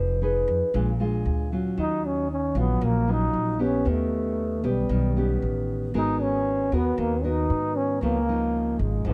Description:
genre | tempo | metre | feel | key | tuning
bossa nova | 115 BPM | 4/4 | straight | Eb minor | A4 = 440 Hz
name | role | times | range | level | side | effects
nylon-string guitar | accompaniment | 0.0-9.1 s | Ab2 to Cb5 | -30 LUFS | equal | none
upright bass | bass | 0.0-9.1 s | F1 to Ab2 | -29 LUFS | equal | none
breathy trombone | melody | 1.8-9.1 s | G3 to Eb4 | -28 LUFS | equal | none
room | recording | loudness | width
light reverb | dark, warm production | -25 LUFS | mono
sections
0.0-1.8 A section; 1.8-9.1 B section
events
none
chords
0.0 Fm7b5; 0.7 Bb7; 1.8 Ebm9; 3.9 Ebaug7; 5.9 Abm9; 8.0 Db9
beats
0.22 0.74 1.26 | 1.78 2.30 2.82 3.34 | 3.86 4.38 4.90 5.42 | 5.94 6.46 6.98 7.50 | 8.02 8.54 9.06

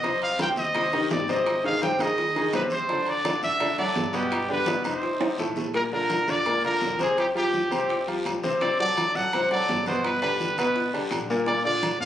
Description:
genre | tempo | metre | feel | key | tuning
latin, salsa | 168 BPM | 4/4 | straight | C harmonic minor | A4 = 440 Hz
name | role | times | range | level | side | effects
bright trumpet | melody | 0.0-12.1 s | G4 to G5 | -25 LUFS | right 1 dB | plate reverb
bright grand piano | accompaniment | 0.0-12.1 s | A2 to D5 | -26 LUFS | left 1 dB | none
upright bass | bass | 0.0-12.1 s | F1 to Bb2 | -39 LUFS | equal | none
bongos | percussion | 0.0-12.0 s | none | -36 LUFS | left 3 dB | none
congas | percussion | 0.0-12.1 s | none | -37 LUFS | left 1 dB | none
guiro | percussion | 0.0-12.1 s | none | -40 LUFS | left 1 dB | none
timbales | percussion | 0.0-12.0 s | none | -33 LUFS | right 4 dB | none
room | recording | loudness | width
moderate studio reverb, RT60 0.8 s | recorded on a phone in the room, club reverb | -22 LUFS | side -11 dB against mid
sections
0.0-5.7 A section; 5.7-12.1 B section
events
drum fill 5.2-5.7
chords
0.0 Cm; 1.5 Ab; 2.9 D; 4.3 G; 5.0 F7; 5.7 Bb; 7.2 Fsus2/C; 8.6 D7; 10.0 G; 11.5 Bb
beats
| 0.04 0.40 0.75 1.11 | 1.46 1.82 2.18 2.53 | 2.89 3.25 3.60 3.96 | 4.32 4.67 5.03 5.39 | 5.75 6.10 6.46 6.82 | 7.18 7.54 7.89 8.25 | 8.61 8.97 9.33 9.68 | 10.04 10.40 10.76 11.12 | 11.47 11.83

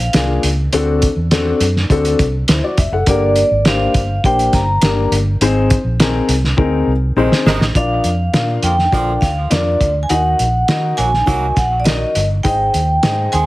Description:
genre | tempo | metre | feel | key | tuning
uptempo 1960s-style soul | 102 BPM | 4/4 | straight | Bb mixolydian | A4 = 440 Hz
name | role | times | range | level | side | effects
vibraphone with hard mallets | melody | 0.0-13.5 s | D5 to Bb5 | -17 LUFS | right 1 dB | none
vintage muted fingered electric bass | bass | 0.0-13.5 s | F1 to Eb3 | -18 LUFS | equal | none
dark upright piano | accompaniment | 0.1-13.4 s | Bb3 to F#5 | -19 LUFS | left 3 dB | none
cloth-damped thuddy drum kit | drums | 0.1-13.5 s | hi-hat, kick drum, snare drum | -17 LUFS | equal | none
warm horn section | second line | 7.2-13.5 s | C3 to Ab4 | -24 LUFS | right 2 dB | tape echo
room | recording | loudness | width
light reverb, small room ambience | heavily compressed radio sound, multiband compression | -13 LUFS | side -18 dB against mid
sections
0.0-7.8 A section; 7.8-13.5 B section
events
band accent 5.4-7.8; drum fill 6.6-7.8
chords
0.0 Bb; 0.7 D7; 3.1 Gm; 5.4 Ab; 7.8 Bb; 10.1 Ebm; 12.4 Ab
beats
0.14 | 0.73 1.31 1.90 2.48 | 3.07 3.65 4.24 4.83 | 5.41 6.00 6.58 7.17 | 7.75 8.34 8.93 9.51 | 10.10 10.69 11.27 11.86 | 12.45 13.03

